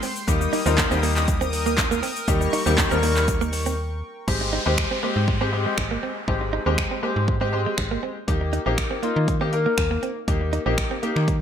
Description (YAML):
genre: dance-pop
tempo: 120 BPM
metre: 4/4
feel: straight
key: Ab major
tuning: A4 = 438 Hz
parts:
  - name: chorused pulse-width pad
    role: sustained chords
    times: 0.0-4.3 s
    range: Ab3 to Eb6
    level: -30 LUFS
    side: equal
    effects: sidechain pumping
  - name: direct-recorded clean electric guitar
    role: riff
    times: 0.0-11.1 s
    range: Ab3 to Eb4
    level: -29 LUFS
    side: right 7 dB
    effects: wide subtle chorus
  - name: slap-like FM bass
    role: bass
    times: 0.0-11.4 s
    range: Ab1 to Eb3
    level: -24 LUFS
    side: equal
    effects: sidechain pumping
  - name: deep house drum kit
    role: drums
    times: 0.0-11.4 s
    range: crash cymbal, finger snaps, handclaps, hi-hat, kick drum, shaker, snare drum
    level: -25 LUFS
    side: equal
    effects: overdrive, gated reverb
  - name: tube shaker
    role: percussion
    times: 0.0-3.8 s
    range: none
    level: -41 LUFS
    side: left 12 dB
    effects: none
  - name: clear concert grand piano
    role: accompaniment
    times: 0.3-11.3 s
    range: G3 to Bb4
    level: -25 LUFS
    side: left 4 dB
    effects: analog chorus, sidechain pumping
  - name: downlifter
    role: sound effects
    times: 4.3-8.3 s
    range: none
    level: -32 LUFS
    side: equal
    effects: none
room: moderate plate reverb, RT60 1.4 s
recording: bright 1980s-style digital production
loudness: -20 LUFS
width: side -8 dB against mid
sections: 0.0-4.3 A section; 4.3-11.4 B section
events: break 3.8-4.3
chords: 0.3 Eb; 4.3 Abmaj7; 8.3 Eb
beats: | 0.28 0.78 1.28 1.78 | 2.28 2.78 3.28 3.78 | 4.28 4.78 5.28 5.78 | 6.28 6.78 7.28 7.78 | 8.28 8.78 9.28 9.78 | 10.28 10.78 11.28